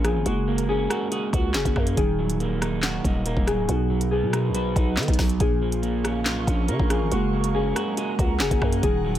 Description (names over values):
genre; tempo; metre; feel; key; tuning
hip hop, drill; 140 BPM; 4/4; half-time; unclear; A4 = 441 Hz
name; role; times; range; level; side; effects
concert harp; melody; 0.0-9.2 s; Gb4 to B4; -28 LUFS; left 3 dB; low-pass filter
electric guitar at the edge of break-up; accompaniment; 0.0-9.2 s; Bb2 to Ab4; -27 LUFS; right 4 dB; lush chorus, low-pass filter
growling 808-style bass; bass; 0.0-9.2 s; Db1 to D#3; -26 LUFS; equal; none
drill drum kit; drums; 0.0-9.2 s; handclaps, hi-hat, kick drum, rim click, snare drum; -24 LUFS; equal; none
ethereal airy pad; sustained chords; 5.9-9.2 s; Ab4 to Eb6; -36 LUFS; right 2 dB; ensemble chorus, built-in reverb, phaser
room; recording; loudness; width
little or no reverb; none; -21 LUFS; side -12 dB against mid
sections
0.0-9.2 A section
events
none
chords
0.3 Gbadd9; 2.0 Ebm; 3.7 B; 5.4 Bbm; 7.1 Gbadd9